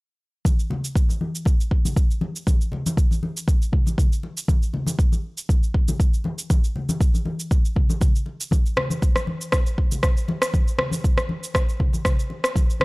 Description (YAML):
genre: house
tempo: 119 BPM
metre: 4/4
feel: swing 54% on 16ths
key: none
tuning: none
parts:
  - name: electronic kick drum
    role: drums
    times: 0.5-12.7 s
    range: none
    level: -19 LUFS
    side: equal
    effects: small room ambience
  - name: electronic shaker and rim click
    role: drums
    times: 0.5-12.8 s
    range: none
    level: -26 LUFS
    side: equal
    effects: small room ambience
  - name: congas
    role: percussion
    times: 0.5-12.8 s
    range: none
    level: -28 LUFS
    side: left 2 dB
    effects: none
room: digital ambience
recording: dry, gritty hardware recording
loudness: -20 LUFS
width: side -25 dB against mid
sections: 0.5-12.8 A section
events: none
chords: none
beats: | 0.45 0.96 1.46 1.97 | 2.47 2.97 3.48 3.98 | 4.49 4.99 5.50 6.00 | 6.50 7.01 7.51 8.02 | 8.52 9.03 9.53 10.03 | 10.54 11.04 11.55 12.05 | 12.55